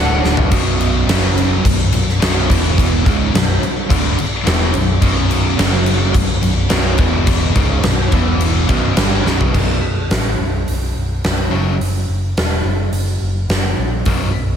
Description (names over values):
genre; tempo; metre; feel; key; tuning
hard rock; 106 BPM; 4/4; straight; B minor; A4 = 438 Hz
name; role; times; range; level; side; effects
high-gain distorted guitar; riff; 0.0-14.3 s; B1 to G3; -21 LUFS; left 8 dB; distortion
overdriven electric guitar; riff; 0.0-14.3 s; B1 to G3; -22 LUFS; right 9 dB; phaser
picked electric bass; bass; 0.0-14.6 s; B0 to A#1; -18 LUFS; equal; none
huge arena drum kit; drums; 0.2-14.2 s; crash cymbal, hi-hat, kick drum, snare drum, toms; -16 LUFS; equal; none
room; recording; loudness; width
light reverb; none; -13 LUFS; side -8 dB against mid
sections
0.5-9.5 A section; 9.5-14.6 B section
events
drum fill 0.2, 9.3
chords
0.0 D; 0.5 B5; 1.1 F#5; 1.6 B5; 2.5 E5; 3.0 Bm; 5.6 F#5; 6.1 B5; 7.0 E5; 7.6 B5; 8.1 E5; 8.7 Bm; 9.5 B5; 11.5 F#5; 14.1 B5